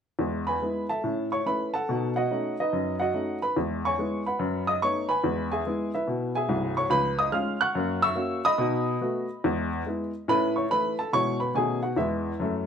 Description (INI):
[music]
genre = jazz, stride piano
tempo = 143 BPM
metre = 4/4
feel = swing 65% on 8ths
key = E major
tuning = A4 = 440 Hz
[part]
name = warm upright piano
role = solo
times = 0.2-12.7 s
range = C1 to F#6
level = -24 LUFS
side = equal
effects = none
[sound]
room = moderate studio reverb, RT60 0.7 s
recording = none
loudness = -24 LUFS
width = side -7 dB against mid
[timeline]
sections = 0.2-12.7 A section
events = none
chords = 0.2 E; 1.0 A; 1.9 B9; 3.6 E; 4.4 B7/F#; 5.2 E; 6.9 C#7; 7.8 F#7; 8.6 B7; 9.4 E; 10.3 A; 11.1 E/B; 11.6 B9; 12.0 E